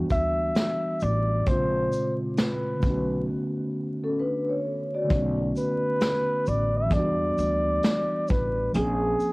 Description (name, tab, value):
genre	lo-fi hip hop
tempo	66 BPM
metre	4/4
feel	swing 65% on 16ths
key	B minor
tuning	A4 = 442 Hz
part	mellow tine electric piano	accompaniment	0.0-9.3 s	A#2 to G#4	-29 LUFS	equal	fast stereo tremolo, cassette tape, low-pass filter
part	upright bass	bass	0.0-9.1 s	A1 to E2	-29 LUFS	equal	none
part	breathy flugelhorn	melody	0.1-9.3 s	G#4 to E5	-26 LUFS	equal	low-pass filter, cassette tape
part	vintage brush drum kit	drums	0.1-9.3 s	hi-hat, kick drum, shaker, snare drum	-26 LUFS	equal	vintage 12-bit sampler grit, cassette tape
part	vibraphone with soft mallets	second line	4.0-5.4 s	C#4 to D5	-28 LUFS	left 1 dB	low-pass filter, cassette tape, analog delay
room	light reverb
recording	home recording on cassette, vinyl crackle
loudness	-23 LUFS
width	side -25 dB against mid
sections	0.0-5.1 A section; 5.1-9.3 B section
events	break 3.3-5.1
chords	0.0 Em9; 1.5 A#m9; 2.8 Bm9; 6.9 Em9; 8.7 A#m9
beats	0.56 | 1.47 2.38 3.29 4.20 | 5.10 6.01 6.92 7.83 | 8.74